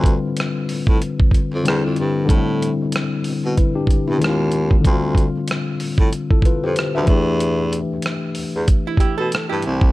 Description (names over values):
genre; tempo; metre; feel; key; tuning
R&B, neo-soul; 94 BPM; 4/4; swing 56% on 16ths; D dorian; A4 = 440 Hz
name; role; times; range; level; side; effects
tine electric piano; accompaniment; 0.0-9.9 s; D3 to E5; -21 LUFS; left 3 dB; none
clear baritone saxophone; bass; 0.0-9.9 s; C2 to B2; -22 LUFS; right 1 dB; none
dusty soul sampler-style drum kit; drums; 0.0-9.9 s; hi-hat, kick drum, rim click; -18 LUFS; right 1 dB; none
archtop guitar, miked and amplified; second line; 8.9-9.9 s; E4 to A4; -24 LUFS; right 7 dB; tape echo
room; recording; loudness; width
light reverb; dark, warm production; -16 LUFS; side -18 dB against mid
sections
0.0-9.9 A section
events
none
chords
0.0 Dm7; 1.6 Dm11/E; 2.3 Am9; 4.2 Ebsus2; 4.8 Dm7; 7.1 Em7